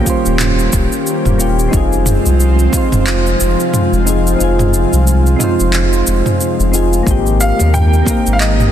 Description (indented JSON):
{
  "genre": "sunset chillout",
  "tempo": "90 BPM",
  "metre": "4/4",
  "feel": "swing 57% on 16ths",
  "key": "unclear",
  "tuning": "A4 = 440 Hz",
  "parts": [
    { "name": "soft electric-piano-like synth keys", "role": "accompaniment", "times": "0.0-8.7 s", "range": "Bb3 to C5", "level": "-17 LUFS", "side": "moving between left 4 dB and right 5 dB", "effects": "chorus, auto-pan, low-pass filter, digital delay" },
    { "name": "airy breathy pad", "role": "sustained chords", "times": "0.0-8.7 s", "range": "C3 to Bb4", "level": "-18 LUFS", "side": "equal", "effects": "chorus" },
    { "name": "deep house drum kit", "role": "drums", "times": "0.1-8.7 s", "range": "handclaps, shaker, toms", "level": "-19 LUFS", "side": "equal", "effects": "none" },
    { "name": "electronic kick drum", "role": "drums", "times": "0.1-2.9, 7.1-8.2 s", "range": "none", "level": "-16 LUFS", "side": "equal", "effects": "none" },
    { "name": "warm sub bass", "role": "bass", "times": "0.3-8.7 s", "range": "Eb1 to Eb2", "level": "-14 LUFS", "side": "equal", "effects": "none" },
    { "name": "clear grand piano", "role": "melody", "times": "7.4-8.7 s", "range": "Eb5 to G5", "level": "-18 LUFS", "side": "equal", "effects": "vintage 12-bit sampler grit, tape echo" },
    { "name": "congas", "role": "percussion", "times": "7.6-8.2 s", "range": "none", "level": "-23 LUFS", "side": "left 6 dB", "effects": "none" }
  ],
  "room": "light reverb",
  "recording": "dense, heavily limited modern master",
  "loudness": "-11 LUFS",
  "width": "side -10 dB against mid",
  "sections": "0.0-8.7 A section",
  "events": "kick drops out 4.4-7.1",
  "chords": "0.0 Eb7; 1.7 Fm7; 7.1 Abmaj9",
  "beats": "0.40 1.07 | 1.74 2.40 3.07 3.74 | 4.40 5.07 5.74 6.40 | 7.07 7.74 8.40"
}